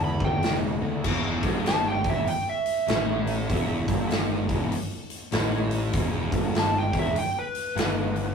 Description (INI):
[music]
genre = blues rock power trio and southern rock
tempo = 98 BPM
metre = 4/4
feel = swing 63% on 8ths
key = E minor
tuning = A4 = 440 Hz
[part]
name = overdriven slide guitar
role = melody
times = 0.0-8.3 s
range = B4 to B5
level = -28 LUFS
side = right 2 dB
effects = none
[part]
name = thick fuzz guitar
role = riff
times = 0.0-8.3 s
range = E2 to D3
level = -29 LUFS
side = equal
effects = distortion
[part]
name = fuzz picked electric bass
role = bass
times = 0.0-8.3 s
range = E1 to E2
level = -30 LUFS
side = equal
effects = overdrive
[part]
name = huge arena drum kit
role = drums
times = 0.2-8.3 s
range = crash cymbal, hi-hat, kick drum, snare drum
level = -27 LUFS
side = left 1 dB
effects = none
[sound]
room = wet booth ambience, RT60 0.2 s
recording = rough rehearsal-room recording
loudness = -23 LUFS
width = side -6 dB against mid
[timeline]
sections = 0.0-1.0 A section; 1.0-8.3 B section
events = electric slide guitar solo 1.0-8.3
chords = 0.0 E5; 1.0 Em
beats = 0.43 | 1.05 1.66 2.27 2.88 | 3.50 4.11 4.72 5.33 | 5.94 6.55 7.17 7.78